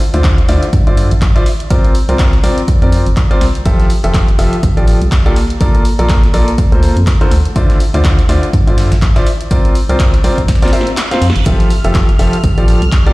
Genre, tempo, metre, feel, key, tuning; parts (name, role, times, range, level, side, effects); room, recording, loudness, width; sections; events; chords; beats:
piano house; 123 BPM; 4/4; swing 57% on 16ths; F major; A4 = 440 Hz
dusty soul sampler-style drum kit; drums; 0.0-13.1 s; hi-hat, snare drum; -32 LUFS; left 2 dB; high-pass filter on snare, sidechain pumping on hats, high-pass filter on hats
punchy analog drum machine; drums; 0.0-13.1 s; handclaps, hi-hat, snare drum; -24 LUFS; equal
clear baby grand piano; riff; 0.1-13.1 s; D3 to F5; -16 LUFS; equal; sidechain pumping, digital delay
organ-like FM bass; bass; 0.1-13.1 s; F1 to G2; -13 LUFS; equal; sidechain pumping
electronic kick drum; drums; 0.2-13.0 s; -12 LUFS; equal; overdrive
reverse cymbal; sound effects; 10.9-11.5 s; -29 LUFS; right 6 dB
string machine, violins; sustained chords; 11.5-13.1 s; F6; -26 LUFS; equal; ensemble chorus, sidechain pumping
little or no reverb; played on a big sound system in a bare room, stone room reverb; -9 LUFS; side -20 dB against mid
0.0-13.1 A section
drum fill 10.5-11.5; reverse cymbal 10.9-11.5; kick drops out 11.0-11.5
0.0 Dm9; 1.5 C9sus4; 3.7 Fmaj9; 5.4 Bbmaj7; 7.3 Dm9; 9.3 C9sus4; 11.5 Fmaj9
0.24 0.73 1.22 | 1.71 2.19 2.68 3.17 | 3.66 4.14 4.63 5.12 | 5.61 6.10 6.58 7.07 | 7.56 8.05 8.54 9.02 | 9.51 10.00 10.49 10.97 | 11.46 11.95 12.44 12.93